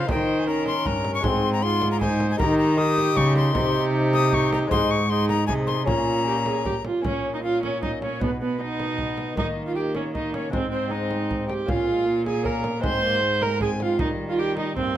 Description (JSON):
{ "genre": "classical, renaissance-style consort dance", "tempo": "156 BPM", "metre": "3/4", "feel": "straight", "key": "Bb dorian", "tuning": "A4 = 440 Hz", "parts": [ { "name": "bright alto recorder", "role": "melody", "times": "0.0-14.8 s", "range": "B4 to Eb6", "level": "-28 LUFS", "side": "left 5 dB", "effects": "none" }, { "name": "warm viola", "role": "second line", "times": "0.0-15.0 s", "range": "B3 to C5", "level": "-26 LUFS", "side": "right 4 dB", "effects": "none" }, { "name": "bright trombone", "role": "accompaniment", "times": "0.0-15.0 s", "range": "G3 to F4", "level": "-30 LUFS", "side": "left 2 dB", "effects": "none" }, { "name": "lute", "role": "accompaniment", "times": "0.0-15.0 s", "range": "G2 to Db5", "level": "-32 LUFS", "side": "left 4 dB", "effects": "none" }, { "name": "rich cello", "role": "bass", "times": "0.0-15.0 s", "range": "G2 to Eb3", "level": "-27 LUFS", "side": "right 1 dB", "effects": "none" }, { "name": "frame drum", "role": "percussion", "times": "0.1-14.9 s", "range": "none", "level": "-31 LUFS", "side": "right 1 dB", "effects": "none" } ], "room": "moderate recital hall reverb, RT60 1.7 s", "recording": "close, detailed microphones", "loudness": "-21 LUFS", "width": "side -12 dB against mid", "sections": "0.0-7.1 A section; 7.1-15.0 B section", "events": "none", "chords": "0.1 Eb; 1.2 Ab; 2.4 Eb; 3.6 Cm; 4.7 Ab; 5.9 Bbm; 8.2 B; 9.4 Eb5; 10.5 Ab; 11.7 Bbm; 12.8 Ab; 14.0 Eb", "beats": "| 0.09 0.48 0.86 | 1.25 1.63 2.01 | 2.40 2.79 3.17 | 3.55 3.94 4.33 | 4.71 5.10 5.49 | 5.88 6.27 6.66 | 7.05 7.44 7.83 | 8.21 8.60 8.99 | 9.37 9.76 10.14 | 10.53 10.92 11.30 | 11.69 12.07 12.45 | 12.84 13.22 13.61 | 13.99 14.38 14.77" }